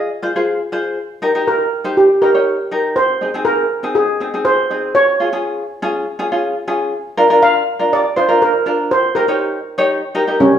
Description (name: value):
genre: calypso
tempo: 121 BPM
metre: 4/4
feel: straight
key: unclear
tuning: A4 = 438 Hz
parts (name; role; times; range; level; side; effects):
- steel pan; melody; 0.0-10.6 s; G3 to F5; -14 LUFS; right 1 dB; slapback echo
- tenor ukulele; accompaniment; 0.0-10.5 s; C4 to Db5; -17 LUFS; left 1 dB; none
room: wet large studio reverb, RT60 1.1 s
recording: band playing live in one room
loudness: -14 LUFS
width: side -9 dB against mid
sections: 0.0-10.6 A section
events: steel pan solo 0.0-10.6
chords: 0.0 Fm; 1.0 Eb; 3.0 Ab; 5.0 Db; 6.9 Bb; 8.9 Eb